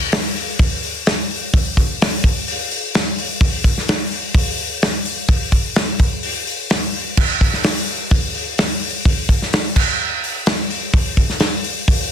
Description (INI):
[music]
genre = rock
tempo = 128 BPM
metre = 4/4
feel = straight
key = none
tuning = none
[part]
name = loose indie drum kit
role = drums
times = 0.1-12.0 s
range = crash cymbal, hi-hat, kick drum, snare drum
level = -16 LUFS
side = equal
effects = none
[sound]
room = moderate studio reverb, RT60 0.5 s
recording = dense, heavily limited modern master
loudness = -16 LUFS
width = side -9 dB against mid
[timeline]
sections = 0.0-12.1 A section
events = none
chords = none